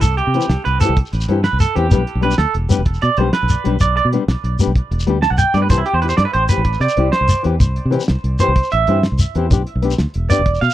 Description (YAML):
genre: highlife guitar band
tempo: 126 BPM (dotted quarters)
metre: 12/8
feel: straight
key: C major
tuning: A4 = 440 Hz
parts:
  - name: clean electric guitar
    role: arpeggios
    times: 0.0-10.7 s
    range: E4 to A5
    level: -19 LUFS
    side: right 4 dB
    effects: tape echo
  - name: fingered electric bass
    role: bass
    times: 0.0-10.7 s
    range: E1 to C3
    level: -18 LUFS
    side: equal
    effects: none
  - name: cloth-damped thuddy drum kit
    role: drums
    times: 0.0-10.7 s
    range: hi-hat, kick drum, snare drum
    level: -19 LUFS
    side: equal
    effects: none
  - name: shekere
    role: percussion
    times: 0.0-10.7 s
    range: none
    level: -17 LUFS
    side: left 1 dB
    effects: none
  - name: nylon-string guitar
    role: accompaniment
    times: 0.3-10.4 s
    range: E3 to G4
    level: -20 LUFS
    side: left 7 dB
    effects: none
room: little or no reverb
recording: dry, close 1970s-style studio recording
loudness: -14 LUFS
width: side -13 dB against mid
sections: 0.0-10.7 A section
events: clean electric guitar solo 0.0-10.7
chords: 0.0 C; 1.9 G; 5.7 C; 9.5 G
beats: | 0.02 0.49 0.97 1.44 | 1.91 2.39 2.86 3.33 | 3.81 4.28 4.76 5.23 | 5.71 6.18 6.66 7.13 | 7.61 8.08 8.56 9.03 | 9.51 9.98 10.46